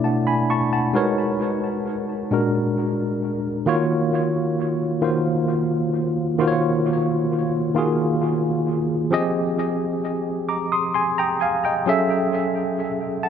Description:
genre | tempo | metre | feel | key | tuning
R&B | 44 BPM (dotted quarters) | 6/8 | straight | Eb dorian from 3.7 s | A4 = 440 Hz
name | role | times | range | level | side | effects
tine electric piano | solo | 0.0-13.3 s | Bb2 to Eb6 | -19 LUFS | equal | overdrive, fast stereo tremolo, tape echo
room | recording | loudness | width
light reverb | echo-heavy mix | -19 LUFS | side -8 dB against mid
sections
0.0-3.7 A section; 3.7-13.3 B section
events
none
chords
0.0 Bm11; 0.9 Abm11; 2.3 Bb7b13; 3.7 Ebm9; 9.1 Fm9; 11.8 Gbm9

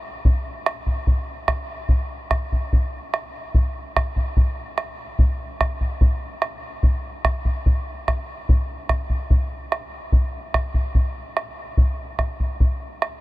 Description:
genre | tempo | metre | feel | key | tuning
andean folk | 73 BPM | 4/4 | straight | none | none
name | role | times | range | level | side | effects
bombo | percussion | 0.3-13.2 s | none | -20 LUFS | equal | none
room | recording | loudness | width
light reverb | none | -20 LUFS | side -17 dB against mid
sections
0.0-13.2 A section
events
none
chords
none

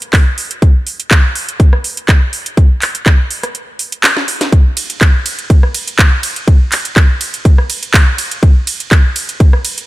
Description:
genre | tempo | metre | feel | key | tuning
house | 123 BPM | 4/4 | swing 54% on 16ths | none | none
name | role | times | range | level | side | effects
house drum kit | drums | 0.0-9.9 s | handclaps, hi-hat, ride cymbal, rim click, snare drum | -14 LUFS | right 1 dB | sidechain pumping on hats, sidechain pumping on cymbals
electronic kick drum | drums | 0.1-9.5 s | none | -8 LUFS | equal | none
room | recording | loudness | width
little or no reverb | none | -9 LUFS | side -18 dB against mid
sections
0.0-9.9 A section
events
break 3.5-4.5; drum fill 4.0-4.5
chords
none

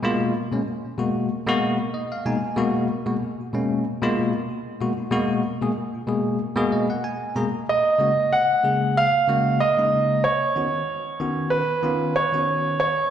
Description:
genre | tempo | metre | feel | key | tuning
jazz | 94 BPM | 4/4 | swing 55% on 16ths | G# dorian | A4 = 438 Hz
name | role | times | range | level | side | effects
bell-like tine electric piano | accompaniment | 0.0-12.8 s | B2 to A#5 | -23 LUFS | left 2 dB | medium stereo tremolo, slapback echo
clear grand piano | melody | 7.7-13.1 s | B4 to F#5 | -20 LUFS | right 2 dB | slapback echo, tape echo
room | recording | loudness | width
moderate plate reverb, RT60 3.6 s | live gig heard through the venue's PA, recital hall reverb | -20 LUFS | side -9 dB against mid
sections
0.0-7.7 A section; 7.7-13.1 B section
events
tine electric piano fill 1.6-2.6, 6.4-7.7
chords
0.0 G#m9; 7.7 G#9sus4; 10.2 C#9sus4

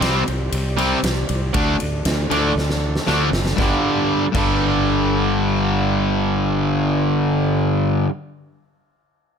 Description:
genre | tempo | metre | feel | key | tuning
hard rock | 118 BPM | 4/4 | straight | unclear | A4 = 440 Hz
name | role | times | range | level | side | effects
chorused pulse-width pad | sustained chords | 0.0-7.3 s | G3 to D5 | -32 LUFS | right 1 dB | none
distorted electric guitar | riff | 0.0-8.1 s | G2 to D4 | -21 LUFS | left 8 dB | distortion
distorted electric guitar | riff | 0.0-8.1 s | G2 to D4 | -22 LUFS | right 11 dB | overdrive
fuzz fingered electric bass | bass | 0.0-8.0 s | F#1 to D2 | -23 LUFS | equal | overdrive
huge arena drum kit | drums | 0.0-4.5 s | crash cymbal, kick drum, ride cymbal, snare drum | -24 LUFS | equal | none
room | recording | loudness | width
light reverb, small room ambience | none | -17 LUFS | side -7 dB against mid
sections
0.0-3.6 A section; 3.6-7.7 B section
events
drum fill 2.6-3.6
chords
0.0 C5; 1.6 D5; 3.6 G5

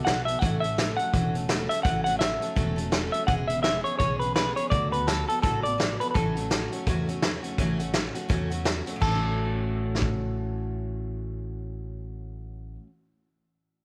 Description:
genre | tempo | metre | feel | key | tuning
rockabilly | 167 BPM | 4/4 | swing 59% on 8ths | A major | A4 = 439 Hz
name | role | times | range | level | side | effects
semi-hollow electric guitar | melody | 0.0-12.8 s | A4 to F#5 | -31 LUFS | equal | tape echo
picked steel-string acoustic guitar | accompaniment | 0.0-12.9 s | A2 to A4 | -34 LUFS | equal | none
upright bass | bass | 0.1-12.8 s | E1 to E2 | -35 LUFS | equal | none
vintage drum kit | drums | 0.1-10.1 s | crash cymbal, hi-hat, kick drum, snare drum | -31 LUFS | equal | none
room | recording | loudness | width
light reverb, studio reverb | none | -27 LUFS | mono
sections
0.0-9.0 A section; 9.0-11.9 B section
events
none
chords
0.4 A6; 3.3 E6; 4.7 D6; 6.2 A6

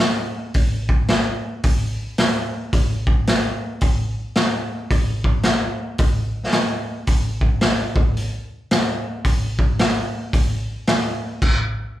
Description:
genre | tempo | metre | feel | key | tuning
rock | 110 BPM | 4/4 | swing 62% on 8ths | none | none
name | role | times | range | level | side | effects
raw garage drum kit | drums | 0.5-11.6 s | crash cymbal, hi-hat, kick drum, snare drum | -18 LUFS | equal | none
room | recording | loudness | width
light reverb | live gig heard through the venue's PA, club reverb | -18 LUFS | side -14 dB against mid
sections
0.0-12.0 A section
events
none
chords
none

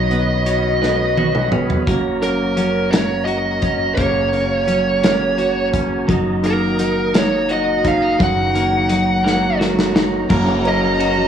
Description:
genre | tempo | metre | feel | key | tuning
six-eight pop ballad | 57 BPM (dotted quarters) | 6/8 | straight | F# major | A4 = 440 Hz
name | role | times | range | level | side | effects
fuzz lead guitar | melody | 0.0-11.3 s | A#4 to F#5 | -20 LUFS | right 1 dB | distortion, slapback echo
warm concert grand piano | accompaniment | 0.0-11.3 s | C#3 to G#5 | -21 LUFS | left 1 dB | none
mellow tonewheel organ | sustained chords | 0.0-11.3 s | A#3 to B5 | -26 LUFS | right 4 dB | overdrive, fast rotary speaker
twelve-string electric guitar | arpeggios | 0.0-11.3 s | D#3 to F#4 | -25 LUFS | equal | spring reverb
upright bass | bass | 0.0-11.3 s | F#1 to B1 | -25 LUFS | equal | none
modern studio drum kit | drums | 0.1-11.2 s | crash cymbal, hi-hat, kick drum, ride cymbal, snare drum, toms | -21 LUFS | equal | none
warm studio violin section | second line | 10.3-11.3 s | A#5 | -22 LUFS | equal | none
room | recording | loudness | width
light reverb, small room ambience | worn, warbling old tape, cassette tape, warbly pitch drift, studio ambience | -15 LUFS | side -8 dB against mid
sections
0.0-10.3 A section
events
drum fill 0.8-1.9, 9.2-10.3; grand piano fill 5.0-6.1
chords
0.0 Badd9; 1.9 F#; 6.1 D#m/F#; 10.3 F#

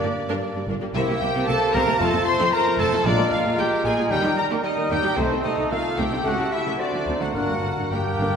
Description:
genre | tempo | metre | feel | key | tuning
classical, dramatic, fast romantic movement for symphony orchestra | 113 BPM | 4/4 | rubato | G minor | A4 = 436 Hz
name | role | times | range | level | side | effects
rich symphonic violin section | melody | 0.0-8.4 s | C5 to C6 | -29 LUFS | left 2 dB | none
bright clarinet | second line | 0.0-8.4 s | D4 to G4 | -32 LUFS | left 3 dB | none
mellow cor anglais | second line | 0.0-8.4 s | A4 to D5 | -32 LUFS | right 1 dB | none
rich symphonic violin section | second line | 0.0-8.4 s | C5 to C6 | -33 LUFS | left 2 dB | none
silver concert flute | second line | 0.0-8.4 s | C5 to C6 | -29 LUFS | left 1 dB | none
mellow bassoon | accompaniment | 0.0-8.4 s | G3 to Bb3 | -29 LUFS | right 2 dB | none
rich studio viola section | accompaniment | 0.0-8.3 s | C3 to Bb4 | -30 LUFS | right 1 dB | none
mellow French horn section | sustained chords | 0.0-8.3 s | G3 to G4 | -32 LUFS | left 3 dB | none
mellow trumpet section | stabs | 0.0-8.4 s | C4 to C5 | -28 LUFS | right 1 dB | none
rich symphonic cello section | bass | 0.0-8.4 s | F2 to Eb3 | -30 LUFS | right 2 dB | none
rich studio double bass section | bass | 0.7-8.3 s | F1 to Eb2 | -30 LUFS | right 1 dB | none
timpani | percussion | 7.3-8.4 s | G2 | -33 LUFS | left 1 dB | none
room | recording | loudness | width
wet scoring stage reverb, RT60 1.7 s | heard from further back in the room | -20 LUFS | side -6 dB against mid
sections
0.0-8.4 A section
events
timpani fill 7.4-8.4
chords
0.0 Gm; 0.9 C7; 2.0 F; 3.0 Bb7; 4.1 Eb; 5.2 Adim/C; 6.2 A7/C#; 6.8 D7; 7.4 Gm

